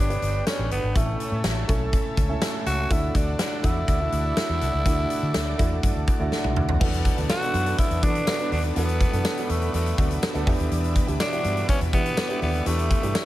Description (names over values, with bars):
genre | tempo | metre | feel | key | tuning
1980s-style pop | 123 BPM | 4/4 | straight | unclear | A4 = 443 Hz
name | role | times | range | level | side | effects
raspy tenor saxophone | melody | 0.0-13.2 s | A3 to F#4 | -28 LUFS | equal | none
warm concert grand piano | accompaniment | 0.0-13.2 s | G2 to C#5 | -29 LUFS | right 2 dB | none
lush unison pad | sustained chords | 0.0-13.2 s | D4 to E6 | -37 LUFS | left 1 dB | chorus
vintage muted fingered electric bass | bass | 0.0-13.1 s | G1 to E3 | -26 LUFS | equal | none
big rock drum kit | drums | 0.1-13.2 s | crash cymbal, hi-hat, kick drum, snare drum, tambourine, toms | -25 LUFS | equal | none
crunchy overdriven guitar | accompaniment | 6.8-13.2 s | E2 to B3 | -37 LUFS | left 3 dB | none
room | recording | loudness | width
light reverb, small room ambience | none | -21 LUFS | side -15 dB against mid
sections
0.0-6.8 A section; 6.8-13.2 B section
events
drum fill 6.3-6.8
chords
0.0 G; 1.0 A; 2.9 Dadd9; 6.8 Bm7; 10.5 Em7